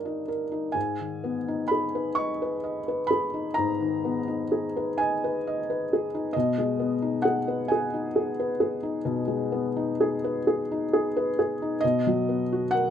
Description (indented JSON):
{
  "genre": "classical, romantic nocturne for solo piano",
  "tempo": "41-45 BPM (dotted quarters)",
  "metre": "12/8",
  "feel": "rubato",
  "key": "G# minor",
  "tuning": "A4 = 440 Hz",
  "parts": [
    { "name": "felt-muted upright piano", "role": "solo", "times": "0.0-12.9 s", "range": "G2 to C#6", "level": "-24 LUFS", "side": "left 1 dB", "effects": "none" }
  ],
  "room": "light reverb",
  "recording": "close, detailed microphones",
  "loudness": "-24 LUFS",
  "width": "side -9 dB against mid",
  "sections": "0.0-12.9 A section",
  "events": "none",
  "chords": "0.0 D#/G; 0.8 G#m; 6.3 G#m/B; 11.8 Bmaj7"
}